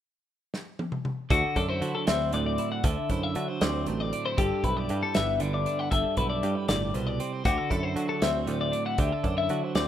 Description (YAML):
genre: math rock and midwest emo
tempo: 78 BPM (dotted quarters)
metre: 6/8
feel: straight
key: unclear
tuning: A4 = 440 Hz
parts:
  - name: loose indie drum kit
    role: drums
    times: 0.5-9.9 s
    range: hi-hat, kick drum, snare drum, toms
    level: -29 LUFS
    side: equal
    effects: none
  - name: twelve-string electric guitar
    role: accompaniment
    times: 1.3-9.9 s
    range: G2 to A4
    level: -31 LUFS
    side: right 6 dB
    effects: none
  - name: twelve-string electric guitar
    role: arpeggios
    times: 1.3-9.9 s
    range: F#4 to F#5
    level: -29 LUFS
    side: left 6 dB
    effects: analog delay
  - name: picked electric bass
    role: bass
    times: 1.3-9.9 s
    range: G1 to D3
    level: -31 LUFS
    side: equal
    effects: none
room: light reverb, small room ambience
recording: rough home demo mix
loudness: -25 LUFS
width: side -10 dB against mid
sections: 0.0-1.3 A section; 1.3-9.9 B section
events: drum fill 0.5-1.3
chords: 0.0 N.C.; 1.3 D9; 4.4 G69; 7.4 D9